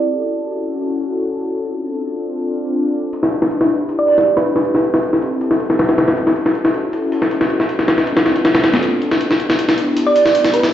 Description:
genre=drum and bass, jungle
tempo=158 BPM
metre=4/4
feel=straight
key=unclear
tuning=A4 = 441 Hz
part: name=airy breathy pad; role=sustained chords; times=0.0-10.7 s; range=B3 to B4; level=-20 LUFS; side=left 1 dB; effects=chorus
part: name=jungle sampler-style drum kit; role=drums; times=3.1-10.7 s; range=hi-hat, snare drum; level=-15 LUFS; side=left 1 dB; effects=none
part: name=thumb-piano-like synth pluck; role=melody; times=4.0-4.7, 10.1-10.7 s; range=B4 to D5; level=-16 LUFS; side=right 4 dB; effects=chorus, dub echo
room=moderate plate reverb, RT60 0.9 s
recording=played on a big sound system in a bare room, stone room reverb, vinyl crackle, low-pass filter, nothing above 7.8 kHz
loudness=-14 LUFS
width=side -11 dB against mid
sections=0.0-10.7 A section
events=filter sweep on analog synth pad 0.0-10.7; filter sweep 0.0-10.7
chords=0.1 F#m7; 1.6 Dm7; 3.1 Em7; 4.7 Am7; 6.2 F#m7; 7.7 Dm7; 9.2 Em7

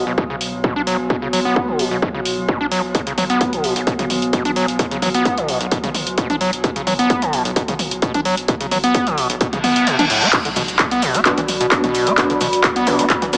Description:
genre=driving peak-time techno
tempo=130 BPM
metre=4/4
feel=straight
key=B minor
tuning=A4 = 439 Hz
part: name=overdriven acid bass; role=riff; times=0.0-13.3 s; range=B1 to D4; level=-22 LUFS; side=equal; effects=distortion, sidechain pumping, tape echo
part: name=saturated sub bass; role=bass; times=0.0-13.4 s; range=B1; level=-41 LUFS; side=equal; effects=overdrive, sidechain pumping, low-pass filter
part: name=metallic inharmonic drone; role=drone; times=0.0-10.4 s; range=B2 to F#3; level=-28 LUFS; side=equal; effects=chorus, built-in reverb, sidechain pumping
part: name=electronic kick drum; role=drums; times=0.2-13.2 s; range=none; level=-24 LUFS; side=equal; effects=none
part: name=punchy analog drum machine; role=drums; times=0.4-13.4 s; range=crash cymbal, handclaps, hi-hat, shaker, toms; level=-23 LUFS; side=equal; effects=sidechain pumping on hats, sidechain pumping on toms, sidechain pumping on cymbals, sidechain pumping on perc
part: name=reverse cymbal and impact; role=sound effects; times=9.6-12.2 s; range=none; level=-23 LUFS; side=equal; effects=none
part: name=warbly tape-like pad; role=texture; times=11.1-13.4 s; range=F#4 to B5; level=-24 LUFS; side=equal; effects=chorus, built-in reverb, sidechain pumping
part: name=rave stab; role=stabs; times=11.3-13.4 s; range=F#3 to D4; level=-24 LUFS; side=equal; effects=chorus, built-in reverb, sidechain pumping, tape echo
room=moderate lush hall reverb, RT60 2.5 s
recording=small speaker sound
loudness=-18 LUFS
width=mono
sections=0.0-10.3 A section; 10.3-13.4 B section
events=reverse cymbal 9.6-10.3; kick drops out 9.9-10.3; drop 10.3-13.4; impact 10.3-12.2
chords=0.0 B5; 10.3 Bm

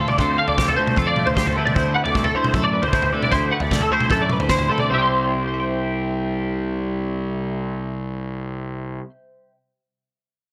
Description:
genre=math rock and midwest emo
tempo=153 BPM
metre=4/4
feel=straight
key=C major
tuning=A4 = 436 Hz
part: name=twelve-string electric guitar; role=accompaniment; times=0.0-9.6 s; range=A2 to G5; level=-29 LUFS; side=equal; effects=phaser
part: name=twelve-string electric guitar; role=arpeggios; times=0.0-9.1 s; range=A4 to C6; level=-23 LUFS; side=equal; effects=ensemble chorus
part: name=fuzz picked electric bass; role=bass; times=0.0-9.0 s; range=C2 to F#2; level=-27 LUFS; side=equal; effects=overdrive
part: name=loose indie drum kit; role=drums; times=0.1-4.9 s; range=kick drum, snare drum, toms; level=-26 LUFS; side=equal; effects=gated reverb
room=moderate plate reverb, RT60 1.2 s, small room reverb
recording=bright 1980s-style digital production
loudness=-21 LUFS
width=mono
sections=0.0-4.9 A section; 4.9-8.0 B section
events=none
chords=0.0 Dm7; 1.6 D13; 4.9 C

